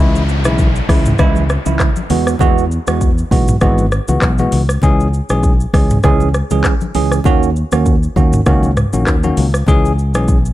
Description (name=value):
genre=afrobeats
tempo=99 BPM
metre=4/4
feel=swing 55% on 16ths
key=C# dorian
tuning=A4 = 437 Hz
part: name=bell-like tine electric piano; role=accompaniment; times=0.0-10.4 s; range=C#3 to G#4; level=-17 LUFS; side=moving between left 3 dB and right 9 dB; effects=auto-pan
part: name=fingered electric bass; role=bass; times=0.0-10.5 s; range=G#1 to E2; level=-16 LUFS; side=equal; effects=none
part: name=downlifter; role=sound effects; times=0.0-4.8 s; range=none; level=-27 LUFS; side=left 1 dB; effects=none
part: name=afro-pop drum kit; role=drums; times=0.2-10.5 s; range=handclaps, hi-hat, kick drum, rim click, shaker, toms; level=-15 LUFS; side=equal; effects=vintage 12-bit sampler grit
part: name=congas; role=percussion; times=0.9-9.8 s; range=none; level=-22 LUFS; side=left 4 dB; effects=none
room=little or no reverb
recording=none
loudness=-11 LUFS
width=side -15 dB against mid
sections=0.0-10.5 A section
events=none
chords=0.0 C#m; 2.1 Eadd9; 4.8 C#m; 7.3 D#m7; 9.7 C#m